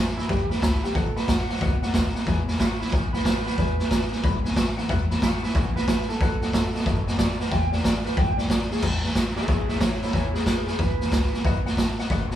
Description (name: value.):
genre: rockabilly.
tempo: 183 BPM.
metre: 4/4.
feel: swing 64% on 8ths.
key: E major.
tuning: A4 = 440 Hz.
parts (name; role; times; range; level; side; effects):
picked steel-string acoustic guitar; accompaniment; 0.0-12.4 s; E2 to F#4; -35 LUFS; left 5 dB; none.
warm upright piano; accompaniment; 0.0-12.4 s; B4 to B5; -37 LUFS; left 5 dB; none.
electric guitar through a small old amp; melody; 0.2-11.7 s; E4 to G5; -31 LUFS; right 2 dB; none.
upright bass; bass; 0.2-12.4 s; F#1 to E2; -29 LUFS; equal; none.
raw garage drum kit; drums; 0.2-12.3 s; crash cymbal, hi-hat, kick drum, snare drum; -23 LUFS; equal; none.
room: light reverb.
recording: band playing live in one room.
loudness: -21 LUFS.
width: side -11 dB against mid.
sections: 0.0-8.8 A section; 8.8-12.4 A section.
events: clean electric guitar solo 0.0-12.4.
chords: 0.0 E; 1.0 B7; 2.3 E; 6.2 B7; 7.5 E; 11.4 B7.